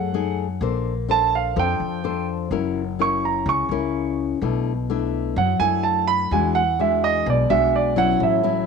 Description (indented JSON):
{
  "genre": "bossa nova",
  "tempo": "127 BPM",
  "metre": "4/4",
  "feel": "straight",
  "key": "unclear",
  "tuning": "A4 = 441 Hz",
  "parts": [
    { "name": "warm grand piano", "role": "melody", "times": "0.0-8.7 s", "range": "D5 to C#6", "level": "-21 LUFS", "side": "right 9 dB", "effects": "none" },
    { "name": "nylon-string guitar", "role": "accompaniment", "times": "0.0-8.7 s", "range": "A2 to C5", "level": "-23 LUFS", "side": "left 11 dB", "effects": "none" },
    { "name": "upright bass", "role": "bass", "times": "0.0-8.7 s", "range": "F#1 to F#2", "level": "-27 LUFS", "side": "equal", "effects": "none" }
  ],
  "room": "moderate echo chamber reverb, RT60 1.3 s, studio ambience",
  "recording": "1960s-style stereo with parts hard left and right",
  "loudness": "-19 LUFS",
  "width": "side -5 dB against mid",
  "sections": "0.0-8.7 A section",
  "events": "grand piano solo 0.0-8.7",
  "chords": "0.0 B6 (rootless); 0.6 Bbmaj9; 2.5 F#7; 4.4 Bm7; 6.3 E9",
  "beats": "0.14 | 0.62 1.09 1.56 2.04 | 2.51 2.99 3.46 3.93 | 4.41 4.88 5.36 5.83 | 6.30 6.78 7.25 7.72 | 8.20"
}